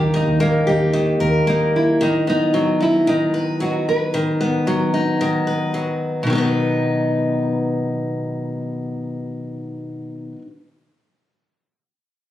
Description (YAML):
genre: pop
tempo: 112 BPM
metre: 4/4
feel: straight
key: B major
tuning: A4 = 440 Hz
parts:
  - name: nylon-string guitar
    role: melody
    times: 0.0-5.7 s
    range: C#4 to B4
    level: -20 LUFS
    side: right 1 dB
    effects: none
  - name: picked steel-string acoustic guitar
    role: accompaniment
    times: 0.0-10.5 s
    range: B2 to B4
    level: -19 LUFS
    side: left 1 dB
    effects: none
  - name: vintage muted fingered electric bass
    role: bass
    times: 0.0-2.0 s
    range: D#2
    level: -20 LUFS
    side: right 1 dB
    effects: none
room: light reverb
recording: recorded on a phone in the room, club reverb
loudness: -17 LUFS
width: side -13 dB against mid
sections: 0.0-6.3 A section; 6.3-10.5 B section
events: none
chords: 0.0 D#; 2.0 B/D#; 6.3 B